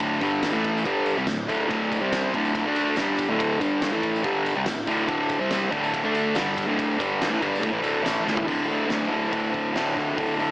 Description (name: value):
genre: garage rock duo or trio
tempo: 142 BPM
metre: 4/4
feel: straight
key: unclear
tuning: A4 = 440 Hz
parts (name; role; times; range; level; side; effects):
- fuzz guitar; riff; 0.0-10.5 s; D2 to D4; -22 LUFS; equal; distortion
- oversized low-tuned drum kit; drums; 0.0-10.5 s; crash cymbal, hi-hat, kick drum, ride cymbal, snare drum, toms; -31 LUFS; equal; none
- tambourine; percussion; 0.0-8.4 s; none; -44 LUFS; right 1 dB; none
room: light reverb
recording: small speaker sound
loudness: -22 LUFS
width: side -20 dB against mid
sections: 0.0-8.5 A section; 8.5-10.5 B section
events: drum fill 8.3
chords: 0.0 D5